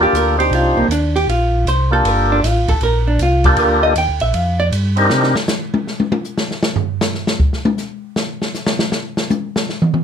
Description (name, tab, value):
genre	soul jazz organ trio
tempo	157 BPM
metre	4/4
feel	swing 65% on 8ths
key	G minor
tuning	A4 = 440 Hz
part	percussive tonewheel organ	melody	0.0-5.4 s	Bb3 to C5	-15 LUFS	equal	slow rotary speaker
part	vintage hollow-body jazz guitar	accompaniment	0.0-4.7 s	Bb3 to G5	-18 LUFS	right 1 dB	none
part	mellow tonewheel organ	bass	0.0-5.3 s	G1 to C3	-17 LUFS	equal	slow rotary speaker
part	open jazz drum kit	drums	0.1-10.0 s	hi-hat, kick drum, ride cymbal, snare drum, toms	-19 LUFS	equal	none
room	moderate studio reverb, RT60 0.5 s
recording	none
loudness	-14 LUFS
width	side -8 dB against mid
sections	0.0-10.0 A section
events	hollow-body jazz guitar solo 0.0-10.0; drum solo 5.1-10.0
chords	0.0 Gm7; 0.5 Cm7; 2.1 Gm7; 5.1 N.C.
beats	0.14 | 0.52 0.91 1.29 1.67 | 2.05 2.43 2.81 3.20 | 3.58 3.96 4.34 4.72 | 5.11 5.49 5.87 6.25 | 6.63 7.01 7.39 7.78 | 8.16 8.54 8.92 9.30 | 9.69